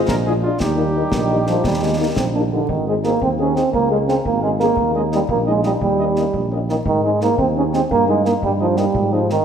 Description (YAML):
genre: military-style march for wind band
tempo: 115 BPM (dotted quarters)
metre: 6/8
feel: straight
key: Ab major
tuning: A4 = 440 Hz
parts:
  - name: dark trombone section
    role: sustained chords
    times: 0.0-2.5 s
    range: G3 to Eb4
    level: -26 LUFS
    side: right 1 dB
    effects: none
  - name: mellow cornet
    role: melody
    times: 0.1-9.4 s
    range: F4 to F5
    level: -31 LUFS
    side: right 1 dB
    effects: none
  - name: mellow tuba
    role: bass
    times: 0.1-9.4 s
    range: Ab1 to Ab2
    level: -22 LUFS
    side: right 2 dB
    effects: none
  - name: concert snare drum and concert bass drum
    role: drums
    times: 0.1-9.4 s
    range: none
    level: -28 LUFS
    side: left 2 dB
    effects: none
  - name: mellow French horn section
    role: accompaniment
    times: 0.3-9.4 s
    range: G3 to Ab4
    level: -24 LUFS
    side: left 6 dB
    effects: none
  - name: clear euphonium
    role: second line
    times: 1.1-9.4 s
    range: D3 to D4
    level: -18 LUFS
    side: right 3 dB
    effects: none
room: wet scoring stage reverb, RT60 1.7 s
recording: none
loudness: -16 LUFS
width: side -8 dB against mid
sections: 0.0-2.7 A section; 2.7-9.4 B section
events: none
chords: 0.1 Bb7; 0.6 Eb; 2.7 Ab; 3.7 Db; 4.8 Eb7; 6.9 Ab; 7.9 Eb/G